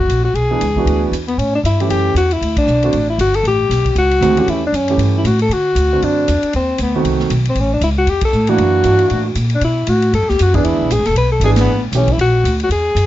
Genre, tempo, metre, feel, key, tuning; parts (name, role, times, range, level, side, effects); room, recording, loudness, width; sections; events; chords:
jazz, small-group swing and bop; 233 BPM; 4/4; swing 58% on 8ths; A mixolydian; A4 = 440 Hz
mellow alto saxophone; melody; 0.0-13.1 s; B3 to B4; -16 LUFS; left 2 dB
upright bass; bass; 0.0-13.1 s; E1 to D3; -16 LUFS; equal
swinging big-band drum kit; drums; 0.1-13.0 s; hi-hat, kick drum, ride cymbal, snare drum; -25 LUFS; left 1 dB
warm concert grand piano; accompaniment; 0.5-12.1 s; D3 to G#4; -19 LUFS; right 5 dB
light reverb; nothing above 7.6 kHz; -12 LUFS; side -14 dB against mid
0.0-1.4 A section; 1.4-13.1 A section
band accent 2.5, 8.2, 11.5
0.4 E7; 1.4 A7; 2.4 D5; 3.4 A7; 5.5 D7; 6.5 D#dim7; 7.6 A; 8.6 F#7alt; 9.6 Bm7; 10.6 E7; 11.7 A7; 12.2 F#aug